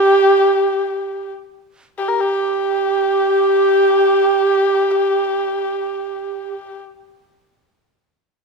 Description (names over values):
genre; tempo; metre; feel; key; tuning
chinese traditional, Chinese chamber ensemble; free time; none; none; unclear; A4 = 440 Hz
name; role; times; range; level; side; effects
xiao; melody; 0.0-6.5 s; G4; -16 LUFS; right 4 dB; none
dark erhu; second line; 0.0-6.8 s; G4 to Bb4; -20 LUFS; left 8 dB; none
room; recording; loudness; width
moderate recital hall reverb, RT60 1.4 s; minimal, uncompressed stereo recording; -14 LUFS; side -3 dB against mid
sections
0.0-2.0 A section; 2.0-7.5 B section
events
slowing down 0.0-2.0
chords
none